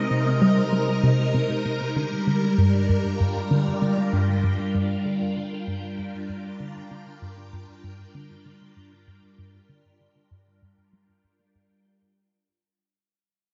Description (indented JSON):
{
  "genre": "ambient, sequencer-driven space music",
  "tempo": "97 BPM",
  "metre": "4/4",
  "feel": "straight",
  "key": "G phrygian",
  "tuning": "A4 = 440 Hz",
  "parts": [
    { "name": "phased string machine", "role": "sustained chords", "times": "0.0-11.9 s", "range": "C3 to G5", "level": "-28 LUFS", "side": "equal", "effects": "ensemble chorus, phaser" },
    { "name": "tight sequenced synth", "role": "riff", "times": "0.1-11.7 s", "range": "G2 to G3", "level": "-26 LUFS", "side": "equal", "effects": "chorus, vintage 12-bit sampler grit, analog delay" }
  ],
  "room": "wet spring reverb, RT60 2.5 s",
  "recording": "echo-heavy mix, nothing above 7.7 kHz",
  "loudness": "-23 LUFS",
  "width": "mono",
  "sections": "0.0-11.9 A section",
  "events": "fade-out 0.0-11.9",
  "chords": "0.0 Cm7; 2.0 Gm7",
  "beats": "0.11 0.72 1.34 | 1.96 2.58 3.20 3.82 | 4.44 5.05 5.67 6.29 | 6.91 7.53 8.15 8.77 | 9.38 10.00 10.62 11.24"
}